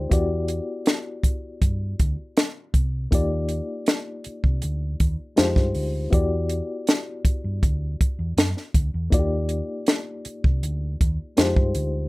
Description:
lush 1970s-style soul; 80 BPM; 4/4; straight; A4 = 439 Hz
reed electric piano; accompaniment; 0.0-12.1 s; Ab3 to G5; -28 LUFS; left 2 dB; overdrive, medium tremolo
hollow-body short-scale fingered electric bass; bass; 0.0-12.1 s; C2 to G2; -26 LUFS; equal
compact cocktail drum kit; drums; 0.1-11.9 s; hi-hat, kick drum, snare drum; -20 LUFS; equal
little or no reverb; rough home demo mix; -21 LUFS; side -21 dB against mid
0.0-12.1 A section
0.1 Em9; 3.1 Ebmaj9; 5.4 Fm9; 6.1 Em9; 9.1 Ebmaj9; 11.4 Fm9
| 0.12 0.87 1.62 2.37 | 3.12 3.87 4.62 5.37 | 6.12 6.88 7.63 8.38 | 9.13 9.88 10.63 11.38

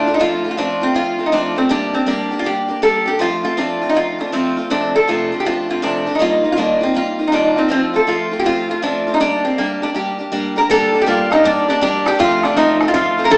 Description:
celtic folk, Celtic hornpipe; 160 BPM; 4/4; swing 65% on 8ths; A4 = 439 Hz
lap resonator guitar; melody; 0.0-13.4 s; Bb3 to Bb4; -16 LUFS; equal
picked steel-string acoustic guitar; accompaniment; 0.0-13.4 s; F2 to G4; -19 LUFS; equal
Irish bouzouki; second line; 10.6-13.4 s; D4 to Bb4; -23 LUFS; equal
mellow accordion; second line; 10.6-13.4 s; D5 to Bb5; -22 LUFS; equal
bodhran; percussion; 10.7-13.4 s; -24 LUFS; equal
wet large studio reverb, RT60 1.2 s; band playing live in one room, small speaker sound; -14 LUFS; side -38 dB against mid
0.0-10.7 A section; 10.7-13.4 B section
0.2 F; 1.7 Gm; 3.2 F; 4.7 F6; 6.2 Ebadd9; 7.7 F; 9.2 Gm; 12.2 F
| 0.20 0.57 0.95 1.32 | 1.70 2.07 2.45 2.82 | 3.20 3.57 3.95 4.32 | 4.70 5.08 5.45 5.83 | 6.20 6.58 6.95 7.33 | 7.70 8.08 8.45 8.83 | 9.20 9.58 9.95 10.32 | 10.70 11.07 11.44 11.82 | 12.19 12.56 12.94 13.31

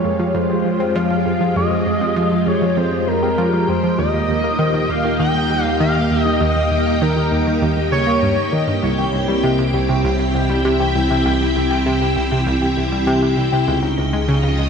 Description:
ambient, sequencer-driven space music; 99 BPM; 4/4; straight; F minor; A4 = 440 Hz
pulse-width lead; melody; 0.0-8.8 s; Bb4 to G5; -22 LUFS; left 2 dB; chorus, tape echo
string machine, full ensemble; sustained chords; 0.0-14.7 s; Ab3 to G5; -19 LUFS; equal; ensemble chorus
analog pluck; riff; 0.0-14.7 s; C2 to C4; -20 LUFS; right 1 dB; chorus, tape echo
warm sub bass; bass; 0.0-14.7 s; C2 to F2; -27 LUFS; equal
Celtic harp; arpeggios; 8.8-14.7 s; Eb4 to G5; -24 LUFS; moving between left 11 dB and left 1 dB; auto-pan, tape echo
wet spring reverb, RT60 2.4 s; echo-heavy mix; -15 LUFS; side -6 dB against mid
0.0-14.7 A section
fade-in on sub bass 0.0-14.7
0.0 Fmadd9; 4.0 Eb; 8.8 C; 13.7 Dbadd9
0.35 0.95 | 1.56 2.17 2.77 3.38 | 3.98 4.59 5.20 5.80 | 6.41 7.01 7.62 8.22 | 8.83 9.44 10.04 10.65 | 11.26 11.86 12.47 13.07 | 13.68 14.29

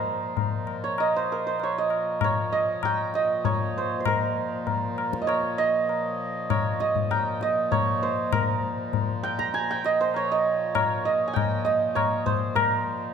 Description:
indian classical, Hindustani; 98 BPM; 7/4; straight; Bb raga bageshri; A4 = 441 Hz
santur; melody; 0.0-13.1 s; Bb4 to Bb5; -25 LUFS; right 4 dB
pedal harmonium; drone; 0.0-13.1 s; Bb2 to F3; -34 LUFS; left 3 dB
tabla; percussion; 0.4-12.8 s; -27 LUFS; left 7 dB
wet recital hall reverb, RT60 1.4 s; -23 LUFS; side -7 dB against mid
0.0-4.0 A section; 4.0-13.1 B section
0.36 0.98 1.59 2.21 2.82 3.44 | 4.05 4.66 5.27 5.89 6.50 7.11 7.72 | 8.33 8.93 9.54 10.15 10.75 11.36 11.96 | 12.57

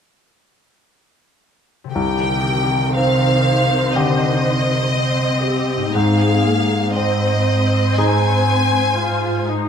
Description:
cinematic; 60 BPM; 4/4; rubato; C minor; A4 = 440 Hz
concert harp; arpeggios; 1.8-9.7 s; Ab2 to Ab4; -27 LUFS; left 8 dB
clear symphonic violin section; melody; 1.9-9.5 s; Eb5 to Ab5; -21 LUFS; left 3 dB
warm symphonic viola section; accompaniment; 1.9-9.7 s; Eb3 to C5; -22 LUFS; equal
bright grand piano; accompaniment; 2.0-9.7 s; C2 to Ab4; -22 LUFS; left 1 dB
rich symphonic cello section; bass; 2.0-9.7 s; Ab2 to C3; -20 LUFS; right 2 dB
moderate recital hall reverb, RT60 1.6 s; close, detailed microphones; -15 LUFS; side -7 dB against mid
2.0-9.7 A section
2.0 Cmadd9; 5.9 Ab
| 1.96 2.96 3.96 4.95 | 5.95 6.95 7.98 8.98

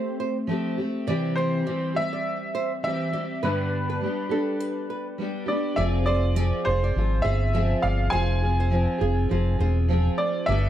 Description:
acoustic pop; 102 BPM; 4/4; swing 60% on 16ths; A4 = 440 Hz
clear upright piano; melody; 0.0-10.7 s; B4 to Ab5; -28 LUFS; right 1 dB; plate reverb, tape echo
fingerpicked steel-string acoustic guitar; accompaniment; 0.0-10.7 s; G2 to Ab4; -27 LUFS; left 1 dB; double-tracked left and right, plate reverb
nylon-string guitar; arpeggios; 0.0-10.7 s; Ab4 to E5; -33 LUFS; right 7 dB; plate reverb
fingered electric bass; bass; 5.8-10.7 s; E1 to Ab1; -22 LUFS; equal
moderate studio ambience, RT60 0.5 s; dark, warm production; -22 LUFS; side -11 dB against mid
0.0-5.8 A section; 5.8-10.7 B section
0.0 Fadd9; 1.1 C; 3.4 G; 5.8 Fm
0.49 | 1.08 1.67 2.25 2.84 | 3.43 4.02 4.60 5.19 | 5.78 6.37 6.95 7.54 | 8.13 8.72 9.30 9.89 | 10.48

